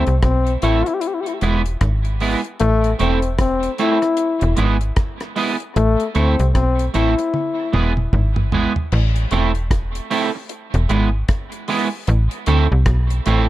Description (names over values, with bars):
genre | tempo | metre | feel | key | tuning
roots reggae | 76 BPM | 4/4 | swing 60% on 16ths | A harmonic minor | A4 = 440 Hz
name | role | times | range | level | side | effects
warm trombone | second line | 0.0-7.7 s | A3 to E4 | -21 LUFS | left 4 dB | tape echo
electric guitar at the edge of break-up | accompaniment | 0.0-13.5 s | G#3 to A4 | -22 LUFS | right 5 dB | analog chorus, tape echo
slap-like FM bass | bass | 0.0-13.5 s | E1 to D2 | -17 LUFS | equal | none
deep reggae drum kit | drums | 0.1-13.5 s | crash cymbal, hi-hat, kick drum, rim click, toms | -23 LUFS | equal | dub echo
room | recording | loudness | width
studio ambience | dark, warm production | -16 LUFS | side -15 dB against mid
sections
0.0-8.9 A section; 8.9-13.5 B section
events
drum fill 7.3-8.9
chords
0.0 Am; 1.0 E; 2.6 Am; 4.2 E; 5.8 Am; 7.3 E; 8.9 Am; 10.5 E; 12.1 Am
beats
0.23 1.02 1.81 | 2.60 3.39 4.18 4.97 | 5.76 6.55 7.34 8.13 | 8.92 9.71 10.50 11.29 | 12.08 12.87